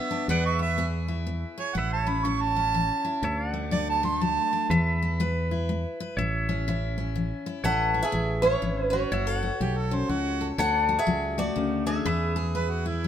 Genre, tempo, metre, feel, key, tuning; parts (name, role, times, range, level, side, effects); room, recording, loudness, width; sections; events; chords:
country; 122 BPM; 3/4; swing 62% on 8ths; A major; A4 = 445 Hz
warm harmonica; second line; 0.0-4.7, 9.6-13.1 s; E4 to C#6; -29 LUFS; right 5 dB
picked steel-string acoustic guitar; accompaniment; 0.0-13.1 s; F#2 to B4; -30 LUFS; left 4 dB
pedal steel guitar; sustained chords; 0.0-13.1 s; B4 to F#5; -34 LUFS; equal
fingered electric bass; bass; 0.3-13.1 s; F#1 to E2; -29 LUFS; equal
picked swing-style acoustic guitar; melody; 7.6-13.1 s; E4 to F#5; -27 LUFS; equal
moderate plate reverb, RT60 3.2 s; minimal, uncompressed stereo recording; -24 LUFS; side -9 dB against mid
0.0-7.6 A section; 7.6-13.1 B section
harmonica solo 0.0-7.6
0.3 E; 1.8 A; 3.2 D; 4.7 E; 6.2 A; 7.6 Aadd9; 9.1 F#m; 10.6 D; 12.1 E